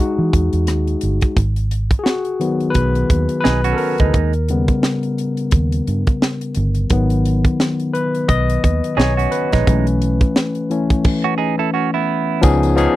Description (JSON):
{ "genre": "lush 1970s-style soul", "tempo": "87 BPM", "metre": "4/4", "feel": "swing 58% on 16ths", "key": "unclear", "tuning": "A4 = 441 Hz", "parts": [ { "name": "barky tine electric piano", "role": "accompaniment", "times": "0.0-13.0 s", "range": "C#3 to D#5", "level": "-19 LUFS", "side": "left 3 dB", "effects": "overdrive" }, { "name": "vintage muted fingered electric bass", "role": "bass", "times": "0.2-12.9 s", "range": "G1 to E3", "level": "-18 LUFS", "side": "right 1 dB", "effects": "none" }, { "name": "tight funk drum kit", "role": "drums", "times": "0.3-13.0 s", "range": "crash cymbal, hi-hat, kick drum, rim click, snare drum", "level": "-17 LUFS", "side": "right 1 dB", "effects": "none" }, { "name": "semi-hollow electric guitar", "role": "riff", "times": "3.4-4.3, 9.0-12.4 s", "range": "G#3 to A4", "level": "-20 LUFS", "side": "right 12 dB", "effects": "none" }, { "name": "tambourine", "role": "percussion", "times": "12.4-13.0 s", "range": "none", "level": "-37 LUFS", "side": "right 24 dB", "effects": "none" } ], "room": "little or no reverb", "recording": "dry, close 1970s-style studio recording", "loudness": "-15 LUFS", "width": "side -15 dB against mid", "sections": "0.0-1.4 A section; 1.4-12.4 B section", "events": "tine electric piano solo 0.0-1.4, 1.4-12.4", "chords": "0.0 Emaj7; 1.4 G#m7; 4.1 D#7b13; 6.9 G#m7; 9.7 B9sus4; 12.4 C#7", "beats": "0.68 | 1.37 2.06 2.75 3.45 | 4.14 4.83 5.52 6.21 | 6.91 7.60 8.29 8.98 | 9.67 10.36 11.05 11.74 | 12.43" }